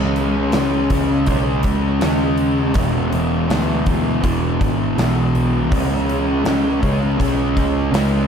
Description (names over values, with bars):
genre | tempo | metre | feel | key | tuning
rock, shoegaze and dream pop | 81 BPM | 4/4 | straight | unclear | A4 = 440 Hz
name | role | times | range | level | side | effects
thick fuzz guitar | riff | 0.0-8.3 s | E2 to C#4 | -17 LUFS | equal | distortion, wide subtle chorus
vintage muted picked electric bass | bass | 0.0-8.3 s | E1 to Eb2 | -23 LUFS | equal | none
gated 80s drum kit | drums | 0.2-8.1 s | hi-hat, kick drum, snare drum | -23 LUFS | equal | none
room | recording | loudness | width
wet huge ambient reverb, RT60 7.9 s | dreamy mix soaked in reverb | -16 LUFS | side -7 dB against mid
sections
0.0-8.3 A section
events
none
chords
0.0 C#5; 2.8 E7; 5.7 C#5